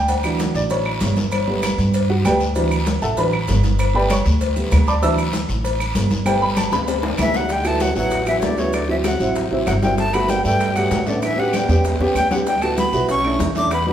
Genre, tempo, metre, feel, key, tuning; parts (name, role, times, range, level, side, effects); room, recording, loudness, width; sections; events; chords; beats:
Afro-Cuban jazz; 194 BPM; 4/4; straight; D major; A4 = 441 Hz
warm upright piano; accompaniment; 0.0-13.9 s; E3 to E6; -21 LUFS; right 2 dB
upright bass; bass; 0.0-13.9 s; G1 to A2; -21 LUFS; equal
agogo bells and timbales; percussion; 0.1-13.9 s; -30 LUFS; right 4 dB
congas; percussion; 0.1-13.9 s; -27 LUFS; equal
cowbell and bongos; percussion; 0.1-13.9 s; -28 LUFS; left 6 dB
guiro; percussion; 0.1-13.9 s; -33 LUFS; left 4 dB
maracas; percussion; 0.1-13.9 s; -38 LUFS; right 4 dB
claves; percussion; 0.2-13.9 s; -33 LUFS; right 1 dB
breathy bright jazz flute; melody; 7.2-13.9 s; C#5 to D6; -22 LUFS; equal
clear trombone; second line; 7.2-13.9 s; C#3 to D4; -27 LUFS; left 2 dB
wet large studio reverb, RT60 1.2 s; band playing live in one room; -16 LUFS; side -10 dB against mid
0.0-7.5 A section; 7.5-13.9 B section
upright piano solo 0.0-7.5; drum fill 6.7-7.5, 11.2-12.5
0.1 Dadd9; 1.3 Gadd9; 2.6 Dadd9; 3.8 Gadd9; 5.0 Dadd9; 6.3 Gadd9; 7.5 D69; 8.7 D9; 10.0 Gmaj9; 11.2 A7; 12.5 D69; 13.1 Bm11
| 0.09 0.40 0.70 1.01 | 1.32 1.63 1.94 2.25 | 2.56 2.87 3.17 3.48 | 3.79 4.10 4.41 4.72 | 5.03 5.33 5.64 5.95 | 6.26 6.57 6.88 7.19 | 7.50 7.81 8.12 8.43 | 8.74 9.05 9.36 9.67 | 9.98 10.29 10.60 10.91 | 11.22 11.54 11.85 12.16 | 12.47 12.78 13.09 13.40 | 13.71